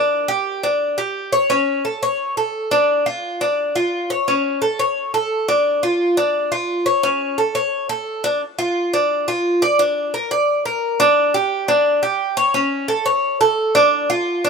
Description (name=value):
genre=latin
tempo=174 BPM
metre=4/4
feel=straight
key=D harmonic minor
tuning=A4 = 441 Hz
part: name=Cuban tres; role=solo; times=0.0-14.5 s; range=C#4 to D5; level=-16 LUFS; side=equal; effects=none
room=light reverb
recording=minimal, uncompressed stereo recording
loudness=-16 LUFS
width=side -5 dB against mid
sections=0.0-8.4 A section; 8.4-14.5 A section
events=none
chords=none